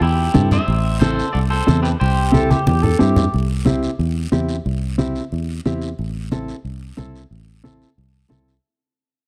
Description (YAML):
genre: latin, cumbia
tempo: 181 BPM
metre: 4/4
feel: straight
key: C major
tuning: A4 = 440 Hz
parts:
  - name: electric guitar at the edge of break-up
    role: melody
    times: 0.0-3.0 s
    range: E4 to E5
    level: -25 LUFS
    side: equal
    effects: spring reverb
  - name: fingered electric bass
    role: bass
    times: 0.0-8.6 s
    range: A1 to G2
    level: -22 LUFS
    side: equal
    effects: none
  - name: congas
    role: percussion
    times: 0.0-8.5 s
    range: none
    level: -23 LUFS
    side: equal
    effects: none
  - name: guiro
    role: percussion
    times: 0.0-8.6 s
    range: none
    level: -39 LUFS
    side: equal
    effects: none
  - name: mellow electric guitar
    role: accompaniment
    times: 0.3-8.5 s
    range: C4 to A4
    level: -23 LUFS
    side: equal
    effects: none
  - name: mellow cor anglais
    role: second line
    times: 2.3-3.3 s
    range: G4 to A4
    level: -27 LUFS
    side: equal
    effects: none
room: studio reverb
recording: dry, close 1970s-style studio recording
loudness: -18 LUFS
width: mono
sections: 0.0-3.3 A section; 3.3-8.6 B section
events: drum fill 2.3-3.3; fade-out 3.3-8.6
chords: 0.0 C; 0.7 Am; 2.0 C; 6.0 Am